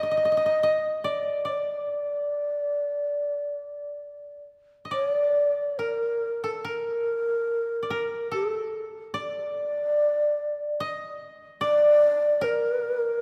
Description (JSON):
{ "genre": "japanese traditional, Japanese chamber music", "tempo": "71 BPM", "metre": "4/4", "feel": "uneven beats, rubato", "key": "unclear", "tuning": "A4 = 440 Hz", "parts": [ { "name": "breathy mellow long shakuhachi", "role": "melody", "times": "0.0-13.2 s", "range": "A4 to Eb5", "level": "-26 LUFS", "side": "equal", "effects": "none" }, { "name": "koto", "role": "second line", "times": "0.0-13.2 s", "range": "A4 to Eb5", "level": "-37 LUFS", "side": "equal", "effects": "none" } ], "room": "moderate church reverb, RT60 2.6 s", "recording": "none", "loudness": "-26 LUFS", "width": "mono", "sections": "0.0-4.9 A section; 4.9-13.2 B section", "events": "none", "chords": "none" }